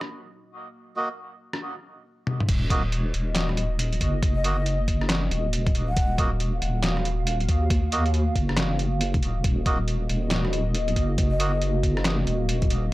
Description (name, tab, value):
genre	deep dubstep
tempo	138 BPM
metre	4/4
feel	swing 62% on 16ths, half-time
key	Eb minor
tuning	A4 = 440 Hz
part	dark analog pad	sustained chords	0.0-12.9 s	Bb3 to F5	-32 LUFS	right 1 dB	chorus, phaser
part	trip hop sampler-style drum kit	drums	0.0-12.8 s	crash cymbal, handclaps, hi-hat, rim click, snare drum, toms	-29 LUFS	equal	overdrive
part	melodica	stabs	1.0-11.5 s	Bb3 to Eb5	-32 LUFS	right 2 dB	dub echo
part	deep soft wobble bass	bass	2.5-12.9 s	Eb1 to Eb2	-25 LUFS	equal	chorus
part	electronic kick drum	drums	2.5-12.7 s	none	-24 LUFS	equal	none
part	breathy mellow ney	melody	4.4-6.2, 11.3-11.6 s	Eb5 to Gb5	-34 LUFS	left 1 dB	dub echo
room	digital ambience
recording	dry, gritty hardware recording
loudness	-22 LUFS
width	side -18 dB against mid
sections	0.0-2.5 A section; 2.5-12.9 B section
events	drum fill 2.3; drop 2.5-12.9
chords	0.0 Ebm